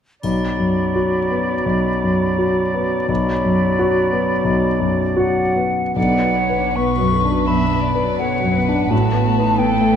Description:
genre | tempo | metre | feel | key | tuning
classical, romantic movement for piano and orchestra | 83 BPM | 4/4 | uneven beats, rubato | B minor | A4 = 440 Hz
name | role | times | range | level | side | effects
warm concert grand piano | melody | 0.2-10.0 s | B1 to B4 | -18 LUFS | left 2 dB | none
bright silver concert flute | second line | 0.2-10.0 s | F#5 to C#6 | -23 LUFS | left 2 dB | none
clear oboe | second line | 0.2-5.6 s | D5 | -26 LUFS | right 3 dB | none
mellow clarinet | second line | 0.2-5.6 s | F#4 | -28 LUFS | right 3 dB | none
warm bassoon | accompaniment | 0.2-5.6 s | F#3 | -24 LUFS | right 2 dB | none
triangle | percussion | 0.2-1.6 s | none | -41 LUFS | left 5 dB | none
warm chamber violin section | melody | 6.0-10.0 s | B4 | -33 LUFS | left 4 dB | none
warm chamber violin section | second line | 6.0-10.0 s | F#4 to E5 | -26 LUFS | left 4 dB | none
warm chamber viola section | accompaniment | 6.0-10.0 s | D3 to D#4 | -25 LUFS | right 2 dB | none
dark chamber double bass section | bass | 6.0-10.0 s | A1 to B1 | -25 LUFS | right 8 dB | none
warm chamber cello section | bass | 6.0-10.0 s | A2 to B2 | -26 LUFS | right 6 dB | none
room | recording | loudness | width
moderate scoring stage reverb, RT60 1.8 s | dark, warm production | -16 LUFS | side -8 dB against mid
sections
0.2-6.0 A section; 6.0-10.0 B section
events
none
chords
0.2 Bm; 8.9 B7/A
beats
| 0.24 0.96 1.68 2.39 | 3.09 3.78 4.45 5.17 | 5.96 6.76 7.48 8.20 | 8.91 9.60

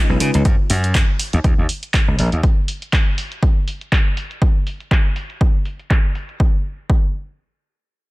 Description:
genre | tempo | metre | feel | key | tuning
filtered disco house | 121 BPM | 4/4 | swing 56% on 16ths | unclear | A4 = 439 Hz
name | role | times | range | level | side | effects
glassy slap bass | bass | 0.1-2.4 s | A#1 to C#3 | -17 LUFS | equal | sidechain pumping, low-pass filter
tambourine | percussion | 0.1-2.4 s | none | barely audible | none | none
punchy analog drum machine | drums | 0.2-6.4 s | handclaps, hi-hat | -24 LUFS | equal | overdrive, sidechain pumping on hats, low-pass filter on hats, sidechain pumping on perc, low-pass filter on perc, low-pass filter on snare, low-pass filter on room
electronic kick drum | drums | 0.5-7.1 s | none | -16 LUFS | equal | overdrive
room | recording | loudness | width
digital ambience | none | -16 LUFS | side -21 dB against mid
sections
0.0-6.4 A section; 6.4-8.1 B section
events
filter sweep on slap bass 0.0-2.4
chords
none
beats
| 0.45 0.95 1.44 1.94 | 2.43 2.93 3.43 3.92 | 4.42 4.91 5.41 5.91 | 6.40 6.90

